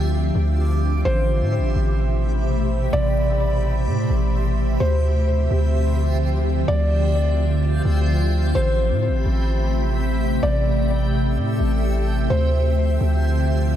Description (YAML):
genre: hip hop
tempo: 128 BPM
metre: 4/4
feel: half-time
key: A minor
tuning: A4 = 440 Hz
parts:
  - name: ethereal airy pad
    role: sustained chords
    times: 0.0-13.8 s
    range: B2 to E5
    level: -24 LUFS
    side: equal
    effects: ensemble chorus, built-in reverb, tremolo
  - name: long sustained 808-style bass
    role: bass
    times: 0.0-13.8 s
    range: A1 to A2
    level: -20 LUFS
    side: equal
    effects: none
  - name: backwards swelling texture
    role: texture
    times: 0.0-13.8 s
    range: C4 to B5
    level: -32 LUFS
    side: right 1 dB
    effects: built-in reverb
  - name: felt-muted upright piano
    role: melody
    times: 1.1-13.8 s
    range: C5 to D5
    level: -27 LUFS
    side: equal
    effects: ping-pong delay
room: light reverb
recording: none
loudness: -18 LUFS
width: side -10 dB against mid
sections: 0.0-1.1 A section; 1.1-13.8 B section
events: none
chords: 0.0 Dm11; 1.1 Am9; 4.8 Dm11; 8.6 Am9; 12.3 Dm11